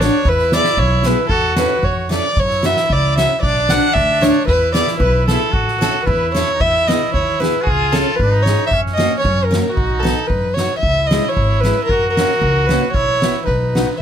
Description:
alpine folk, alpine dance band; 114 BPM; 2/4; rubato; A major, E major from 6.6 s; A4 = 440 Hz
dark fiddle; melody; 0.0-14.0 s; F#4 to F#5; -17 LUFS; equal
clear trumpet; second line; 0.0-14.0 s; C#4 to F#4; -22 LUFS; right 3 dB
picked steel-string acoustic guitar; accompaniment; 0.0-13.9 s; G#3 to B4; -20 LUFS; equal
upright bass; bass; 0.0-13.8 s; G#1 to F#2; -20 LUFS; equal
soft-mallet drum kit; drums; 0.0-13.9 s; crash cymbal, hi-hat, kick drum, snare drum; -22 LUFS; equal
little or no reverb; close, detailed microphones; -13 LUFS; side -9 dB against mid
0.0-6.6 A section; 6.6-14.0 B section
0.3 E; 1.3 A/E; 2.4 F#7; 3.4 Bm; 4.5 E; 5.5 A; 6.6 E; 7.7 C#; 8.7 F#; 9.8 B; 10.8 C#m; 11.9 F#; 12.9 Bsus4; 13.5 B
| 0.26 0.79 | 1.31 1.84 | 2.38 2.91 | 3.43 3.95 | 4.47 5.00 | 5.52 6.06 | 6.59 7.13 | 7.66 8.19 | 8.71 9.23 | 9.76 10.29 | 10.82 11.35 | 11.88 12.40 | 12.93 13.46 | 14.00

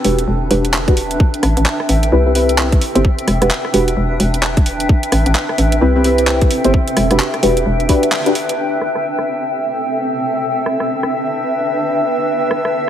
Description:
UK garage, two-step garage; 130 BPM; 4/4; swing 61% on 16ths; A minor; A4 = 441 Hz
deep mellow chord stab; stabs; 0.0-8.3 s; C4 to C5; -17 LUFS; equal; chorus, phaser, tape echo
hollow knocking FM bass; bass; 0.0-7.9 s; E1 to C2; -16 LUFS; equal
garage drum kit; drums; 0.0-12.7 s; handclaps, hi-hat, rim click; -20 LUFS; right 1 dB; overdrive, low-pass filter on hats, low-pass filter on snare
granular cloud pad; texture; 0.0-12.9 s; C4 to G5; -19 LUFS; equal; built-in reverb, sidechain pumping
electronic kick drum; drums; 0.9-8.0 s; -13 LUFS; equal; overdrive
airy breathy pad; sustained chords; 8.6-12.9 s; E5; -22 LUFS; equal; chorus, sidechain pumping
moderate lush hall reverb, RT60 2.2 s; heavily compressed radio sound; -13 LUFS; side -10 dB against mid
0.0-8.6 A section; 8.6-12.9 B section
filter sweep on synth stab 0.0-8.6; band accent 8.1
0.0 Em7; 1.2 Am7; 3.0 Em7; 4.9 Am7; 6.7 Em7; 8.6 Am7
0.28 0.74 | 1.20 1.66 2.12 2.59 | 3.05 3.51 3.97 4.43 | 4.89 5.36 5.82 6.28 | 6.74 7.20 7.66 8.12 | 8.59 9.05 9.51 9.97 | 10.43 10.89 11.36 11.82 | 12.28 12.74

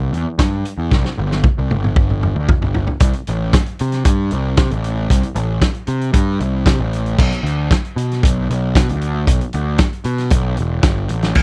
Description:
indie rock; 115 BPM; 4/4; straight; C major; A4 = 442 Hz
fuzz picked electric bass; bass; 0.0-11.4 s; E1 to C3; -18 LUFS; equal; overdrive
loose indie drum kit; drums; 0.1-11.4 s; crash cymbal, hi-hat, kick drum, snare drum, toms; -15 LUFS; equal
little or no reverb; dry, close 1970s-style studio recording; -14 LUFS; side -36 dB against mid
0.0-3.0 A section; 3.0-11.4 B section
drum fill 0.9-3.0
0.39 | 0.91 1.43 1.96 2.48 | 3.01 3.53 4.05 4.58 | 5.10 5.62 6.14 6.67 | 7.19 7.71 8.23 8.76 | 9.28 9.80 10.32 10.84 | 11.36

